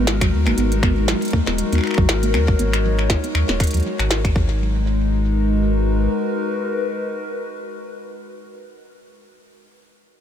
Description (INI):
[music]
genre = IDM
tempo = 119 BPM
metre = 4/4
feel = swing 56% on 16ths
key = G# minor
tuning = A4 = 440 Hz
[part]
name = warbly tape-like pad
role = sustained chords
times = 0.0-9.3 s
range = G#3 to C#5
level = -23 LUFS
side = left 2 dB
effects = chorus, built-in reverb, phaser
[part]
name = deep acid bass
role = arpeggios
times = 0.0-4.8 s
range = F#3 to D#4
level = -27 LUFS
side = right 4 dB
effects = lush chorus, ping-pong delay
[part]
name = warm sub bass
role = bass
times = 0.0-6.1 s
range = D#1 to D#2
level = -20 LUFS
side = equal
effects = tube saturation
[part]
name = glitchy drum kit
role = drums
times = 0.1-4.3 s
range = finger snaps, hi-hat, snare drum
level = -24 LUFS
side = equal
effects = overdrive, ping-pong delay
[part]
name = electronic kick drum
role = drums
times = 0.2-4.5 s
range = none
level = -19 LUFS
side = equal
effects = overdrive
[sound]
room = light reverb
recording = none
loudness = -17 LUFS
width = side -9 dB against mid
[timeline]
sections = 0.0-4.6 A section; 4.6-8.6 B section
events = filter sweep on acid bass 0.0-4.6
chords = 0.0 G#m9; 4.4 G#5; 4.6 G#m9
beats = 0.07 | 0.58 1.08 1.58 2.09 | 2.59 3.10 3.60 4.11 | 4.61 5.11 5.62 6.12 | 6.63 7.13 7.63 8.14